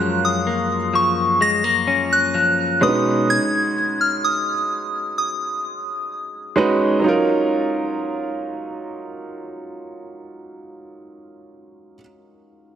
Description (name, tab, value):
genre	R&B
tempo	64 BPM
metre	4/4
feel	straight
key	Eb minor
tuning	A4 = 440 Hz
part	soft synth bell	melody	0.0-6.1 s	Db6 to Bb6	-19 LUFS	equal	chorus, phaser, tape echo
part	clear grand piano	accompaniment	0.0-12.8 s	Gb3 to B4	-22 LUFS	right 2 dB	none
part	direct-recorded clean electric guitar	arpeggios	0.0-3.9 s	Gb2 to Db4	-23 LUFS	left 5 dB	none
room	wet plate reverb, RT60 3.5 s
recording	dreamy mix soaked in reverb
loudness	-17 LUFS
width	side -9 dB against mid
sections	0.0-7.0 A section; 7.0-10.8 B section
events	none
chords	0.0 Gbmaj7; 2.8 B69; 7.0 Ebm7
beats	0.47 1.41 2.35 | 3.28 4.22 5.16 6.10 | 7.03 7.97 8.91 9.85